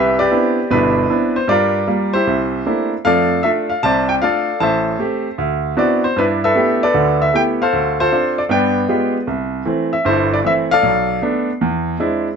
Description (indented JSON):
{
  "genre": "solo jazz",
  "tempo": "154 BPM",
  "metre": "4/4",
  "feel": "swing 67% on 8ths",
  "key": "G major, C major from 9.3 s",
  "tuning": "A4 = 442 Hz",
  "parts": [
    { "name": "clear grand piano", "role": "solo", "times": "0.0-12.3 s", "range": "G1 to A5", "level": "-14 LUFS", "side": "equal", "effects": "none" }
  ],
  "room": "moderate club reverb, RT60 0.6 s",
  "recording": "nothing above 7.8 kHz",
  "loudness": "-14 LUFS",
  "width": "side -6 dB against mid",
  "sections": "0.0-9.3 A section; 9.3-12.4 B section",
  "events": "none",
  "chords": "0.0 Cmaj9; 1.5 Gm7; 2.3 C13; 3.0 F6; 4.6 Am7; 5.4 D13; 6.2 G69; 7.7 Dm7; 8.5 G7b9; 9.3 C6; 10.8 Bm7b5; 11.6 Eaug7",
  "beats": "0.31 0.70 1.09 | 1.48 1.87 2.26 2.65 | 3.04 3.43 3.82 4.21 | 4.60 4.99 5.38 5.77 | 6.16 6.55 6.94 7.33 | 7.72 8.11 8.50 8.89 | 9.28 9.67 10.05 10.44 | 10.83 11.22 11.61 12.00"
}